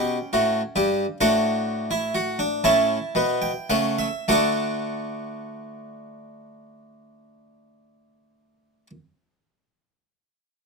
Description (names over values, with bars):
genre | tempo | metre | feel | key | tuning
classical, baroque-style 4-part fugue for harpsichord | 34-48 BPM (dotted quarters) | 6/8 | straight | D major | A4 = 440 Hz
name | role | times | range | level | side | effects
harpsichord | solo | 0.0-8.9 s | G2 to A5 | -21 LUFS | equal | none
room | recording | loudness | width
moderate studio reverb, RT60 0.8 s | close, detailed microphones | -20 LUFS | side -4 dB against mid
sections
0.0-4.3 A section; 4.3-7.8 B section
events
slowing down 0.0-4.3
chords
0.0 G; 1.2 D/A; 2.7 A7; 4.3 D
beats
| 1.23 2.66 | 4.29 6.06